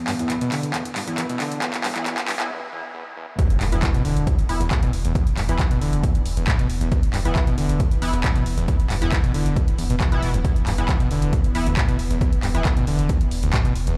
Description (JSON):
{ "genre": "driving peak-time techno", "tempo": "136 BPM", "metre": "4/4", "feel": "straight", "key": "unclear", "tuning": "A4 = 439 Hz", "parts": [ { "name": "deep dark ambient pad", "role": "drone", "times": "0.0-14.0 s", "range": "E3 to B3", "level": "-35 LUFS", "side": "equal", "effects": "chorus, built-in reverb, sidechain pumping" }, { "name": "overdriven acid bass", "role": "riff", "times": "0.1-14.0 s", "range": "D2 to E3", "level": "-28 LUFS", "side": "equal", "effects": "distortion, sidechain pumping, dub echo" }, { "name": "punchy analog drum machine", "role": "drums", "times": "0.1-14.0 s", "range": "handclaps, hi-hat", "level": "-32 LUFS", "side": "equal", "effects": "overdrive, sidechain pumping on hats" }, { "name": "sync-sweep polysynth", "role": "stabs", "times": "0.2-12.7 s", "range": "E3 to E4", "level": "-34 LUFS", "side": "equal", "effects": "chorus, phaser, sidechain pumping, dub echo" }, { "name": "electronic kick drum", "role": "drums", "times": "3.4-13.6 s", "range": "none", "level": "-23 LUFS", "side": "equal", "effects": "overdrive" }, { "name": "impact", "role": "sound effects", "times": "3.4-5.2 s", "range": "none", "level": "-34 LUFS", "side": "equal", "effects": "none" }, { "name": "warm sub bass", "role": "bass", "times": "3.5-14.0 s", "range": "E1", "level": "-28 LUFS", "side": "equal", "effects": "overdrive, sidechain pumping, low-pass filter" } ], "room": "light reverb", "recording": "played on a big sound system in a bare room, large studio reverb, high-pass filter", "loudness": "-22 LUFS", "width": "mono", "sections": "0.0-3.4 A section; 3.4-14.0 B section", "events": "build-up 0.0-3.4; drum fill 0.0-2.5; filter sweep on acid bass 0.0-3.4; filter sweep on analog polysynth 0.0-3.4; break 2.5-3.4; drop 3.4-14.0; impact 3.4-5.2", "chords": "0.0 E5" }